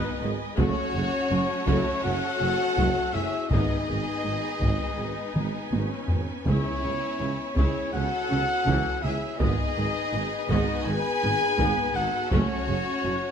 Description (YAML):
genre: cinematic, epic orchestral film score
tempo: 82 BPM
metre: 4/4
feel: straight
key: unclear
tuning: A4 = 436 Hz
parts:
  - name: clear studio violin section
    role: melody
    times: 0.0-13.3 s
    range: D#4 to B4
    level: -36 LUFS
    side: left 3 dB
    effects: none
  - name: warm symphonic violin section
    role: second line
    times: 0.0-13.3 s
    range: B4 to G#5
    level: -36 LUFS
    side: left 3 dB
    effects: none
  - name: warm symphonic viola section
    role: accompaniment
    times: 0.0-13.1 s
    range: C#3 to F#4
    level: -33 LUFS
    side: equal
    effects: none
  - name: clear symphonic string section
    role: sustained chords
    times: 0.0-13.3 s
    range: G#3 to G#5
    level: -35 LUFS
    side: left 2 dB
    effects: none
  - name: mellow French horn section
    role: sustained chords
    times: 0.0-13.3 s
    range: B3 to G#4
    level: -34 LUFS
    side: left 7 dB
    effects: none
  - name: mellow trumpet section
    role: stabs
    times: 0.0-13.3 s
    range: B4 to G#5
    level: -30 LUFS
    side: equal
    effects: none
  - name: mellow tuba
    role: bass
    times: 0.2-13.2 s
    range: F#1 to C#2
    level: -34 LUFS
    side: right 4 dB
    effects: none
  - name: warm symphonic cello section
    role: bass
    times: 0.2-13.1 s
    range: F#2 to C#3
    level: -33 LUFS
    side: right 2 dB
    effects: none
  - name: warm symphonic double bass section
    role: bass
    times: 0.2-13.1 s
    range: F#1 to C#2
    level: -33 LUFS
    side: right 4 dB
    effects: none
  - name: taiko ensemble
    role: drums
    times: 0.6-13.0 s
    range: none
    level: -29 LUFS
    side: left 1 dB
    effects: none
  - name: timpani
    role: percussion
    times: 3.5-7.5 s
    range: G#2 to C#3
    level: -33 LUFS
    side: left 1 dB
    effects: none
room: light reverb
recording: none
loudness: -23 LUFS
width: side -7 dB against mid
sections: 0.0-13.3 A section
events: drum fill 5.4-6.5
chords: 0.0 G#m; 0.6 F#m; 3.5 G#m; 6.5 C#m; 9.4 G#m; 12.3 F#m